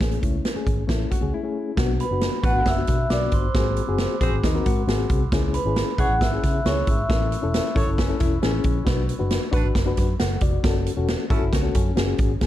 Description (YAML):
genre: uptempo 1960s-style soul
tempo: 135 BPM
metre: 4/4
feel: straight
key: B dorian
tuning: A4 = 441 Hz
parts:
  - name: mellow reed electric piano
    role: accompaniment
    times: 0.0-12.5 s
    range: A3 to F#5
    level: -28 LUFS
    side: left 5 dB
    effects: fast tremolo
  - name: vintage muted fingered electric bass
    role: bass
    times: 0.0-12.5 s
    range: E1 to C#3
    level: -26 LUFS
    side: equal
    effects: none
  - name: swinging big-band drum kit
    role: drums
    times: 0.0-12.5 s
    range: hi-hat, kick drum, snare drum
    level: -23 LUFS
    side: equal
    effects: none
  - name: hollow-body jazz guitar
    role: riff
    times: 0.9-5.3, 8.0-12.4 s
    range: B#3 to F#4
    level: -31 LUFS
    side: left 8 dB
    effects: none
  - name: vibraphone with soft mallets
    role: melody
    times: 2.0-7.7 s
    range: B4 to F#5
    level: -27 LUFS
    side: equal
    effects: none
  - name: glockenspiel with rubber mallets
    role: second line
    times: 2.0-7.7 s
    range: B5 to F#6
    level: -33 LUFS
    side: right 3 dB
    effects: analog delay
  - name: clear saxophone section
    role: second line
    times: 2.4-11.4 s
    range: C#4 to C#5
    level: -33 LUFS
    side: right 2 dB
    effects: none
room: light reverb, small room ambience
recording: dark, warm production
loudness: -20 LUFS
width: side -13 dB against mid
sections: 0.0-1.8 A section; 1.8-12.5 B section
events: break 1.3-1.8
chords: 0.0 Amaj7; 1.8 Bm; 3.5 G#7; 5.3 C#m; 7.1 A; 8.9 Bm; 10.6 F#m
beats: | 0.01 0.45 0.89 1.33 | 1.78 2.22 2.66 3.10 | 3.55 3.99 4.43 4.88 | 5.32 5.76 6.21 6.65 | 7.09 7.54 7.98 8.42 | 8.87 9.31 9.75 10.20 | 10.64 11.08 11.53 11.97 | 12.41